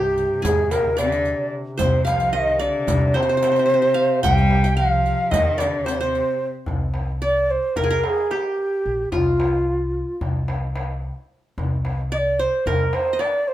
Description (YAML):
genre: Turkish makam ensemble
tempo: 221 BPM (eighths)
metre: 9/8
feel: straight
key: C makam ussak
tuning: A4 = 440 Hz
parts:
  - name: breathy reedy ney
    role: melody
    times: 0.0-13.5 s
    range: F4 to G5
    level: -20 LUFS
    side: right 1 dB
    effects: none
  - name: clear cello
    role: second line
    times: 0.0-6.5 s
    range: G2 to G3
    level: -27 LUFS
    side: left 4 dB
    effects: none
  - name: qanun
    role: second line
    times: 0.0-13.5 s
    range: F4 to G5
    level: -29 LUFS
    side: right 1 dB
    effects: none
  - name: upright bass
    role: bass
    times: 0.0-12.9 s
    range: Bb1 to Eb2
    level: -24 LUFS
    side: equal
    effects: none
  - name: mellow duduk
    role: drone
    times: 0.0-6.7 s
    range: C3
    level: -30 LUFS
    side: left 1 dB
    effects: none
  - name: riq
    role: percussion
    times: 0.2-6.2 s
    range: none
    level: -32 LUFS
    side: right 5 dB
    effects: none
  - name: darbuka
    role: percussion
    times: 0.4-13.5 s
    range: none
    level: -27 LUFS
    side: left 2 dB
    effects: none
room: moderate studio reverb, RT60 0.6 s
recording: minimal, uncompressed stereo recording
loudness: -18 LUFS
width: side -13 dB against mid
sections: 0.0-6.7 A section; 6.7-13.5 B section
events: none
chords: none